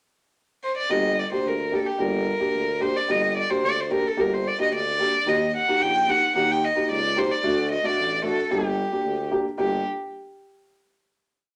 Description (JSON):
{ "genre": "klezmer", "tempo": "110 BPM", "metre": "2/4", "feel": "straight", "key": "G harmonic minor", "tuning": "A4 = 440 Hz", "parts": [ { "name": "rich violin", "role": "melody", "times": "0.6-9.8 s", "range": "G4 to G5", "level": "-26 LUFS", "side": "equal", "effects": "none" }, { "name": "dark upright piano", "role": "accompaniment", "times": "0.9-9.8 s", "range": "A3 to G4", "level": "-29 LUFS", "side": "equal", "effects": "none" }, { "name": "warm tuba", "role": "bass", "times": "0.9-9.8 s", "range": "G1 to Eb2", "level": "-32 LUFS", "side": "equal", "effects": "none" } ], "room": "wet studio reverb, RT60 0.7 s", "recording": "none", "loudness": "-23 LUFS", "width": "mono", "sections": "0.0-0.9 pickup bar; 0.9-9.6 A section; 9.6-10.6 final chord", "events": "none", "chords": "0.0 N.C.; 0.9 Gm; 5.3 Eb; 7.4 D; 8.5 Gm" }